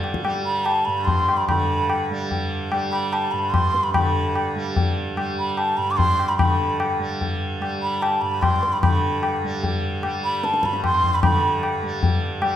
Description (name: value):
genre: indian classical, Hindustani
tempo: 148 BPM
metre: 3/4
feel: straight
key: G raga khamaj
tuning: A4 = 437 Hz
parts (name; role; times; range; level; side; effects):
- tanpura; drone; 0.0-12.6 s; G2 to G3; -26 LUFS; right 3 dB; none
- tabla; percussion; 0.0-12.6 s; none; -23 LUFS; left 3 dB; none
- breathy bright bansuri; melody; 0.5-11.8 s; A5 to D6; -22 LUFS; right 1 dB; none
room: wet recital hall reverb, RT60 1.3 s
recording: none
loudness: -19 LUFS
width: side -10 dB against mid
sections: 0.0-8.8 A section; 8.8-12.6 B section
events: speeding up 0.0-12.6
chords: none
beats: | 0.24 0.66 1.07 | 1.48 1.90 2.31 | 2.72 3.13 3.54 | 3.95 4.36 4.77 | 5.18 5.59 5.99 | 6.40 6.81 7.21 | 7.62 8.02 8.42 | 8.83 9.23 9.63 | 10.03 10.43 10.83 | 11.23 11.63 12.02 | 12.42